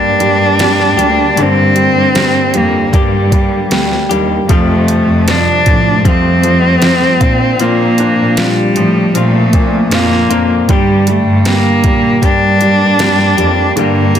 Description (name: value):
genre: pop ballad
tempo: 78 BPM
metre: 4/4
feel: straight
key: unclear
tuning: A4 = 440 Hz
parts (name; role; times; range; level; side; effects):
- warm cello; melody; 0.0-14.2 s; G3 to D4; -12 LUFS; equal; none
- bright concert grand piano; accompaniment; 0.0-14.2 s; Bb2 to F4; -16 LUFS; right 2 dB; none
- direct-recorded clean electric guitar; arpeggios; 0.0-14.2 s; F2 to G4; -19 LUFS; left 8 dB; ping-pong delay
- rich symphonic cello section; bass; 0.0-14.2 s; D2 to Bb2; -16 LUFS; equal; none
- smooth R&B drum kit; drums; 0.2-14.2 s; hi-hat, kick drum, snare drum; -15 LUFS; equal; none
room: light reverb, studio reverb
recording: dense, heavily limited modern master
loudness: -9 LUFS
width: side -9 dB against mid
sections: 0.0-14.2 A section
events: none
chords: 0.0 Gm; 4.5 Fadd9; 7.2 Bbadd9; 10.7 Gm